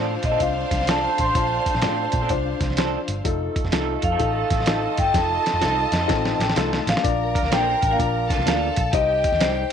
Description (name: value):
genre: uptempo 1960s-style soul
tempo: 126 BPM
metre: 4/4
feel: swing 66% on 8ths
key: Bb major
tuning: A4 = 440 Hz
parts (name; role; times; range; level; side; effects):
- rich studio violin section; second line; 0.0-9.7 s; D4 to Bb5; -30 LUFS; equal; none
- dark upright piano; accompaniment; 0.0-9.7 s; D4 to C6; -28 LUFS; left 12 dB; none
- electric guitar through a small old amp; stabs; 0.0-9.6 s; F3 to Bb4; -30 LUFS; right 14 dB; tremolo
- vintage muted picked electric bass; bass; 0.0-9.6 s; F1 to Bb2; -27 LUFS; right 1 dB; none
- vibraphone with medium mallets; melody; 0.2-9.7 s; C5 to C6; -23 LUFS; left 2 dB; auto-pan
- dusty soul sampler-style drum kit; drums; 0.2-9.7 s; hi-hat, kick drum, snare drum; -24 LUFS; right 1 dB; none
- warm horn section; second line; 0.4-8.7 s; F3 to D5; -31 LUFS; right 11 dB; none
- electric guitar through a small old amp; riff; 6.1-7.0 s; Eb3 to G4; -29 LUFS; left 13 dB; none
room: light reverb, studio reverb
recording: 1960s-style stereo with parts hard left and right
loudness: -19 LUFS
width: side -8 dB against mid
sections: 0.0-7.0 A section; 7.0-9.7 B section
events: upright piano fill 2.5-3.2; drum fill 5.1-7.0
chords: 0.0 Dm7; 3.2 F7; 7.0 Bb; 8.9 Cm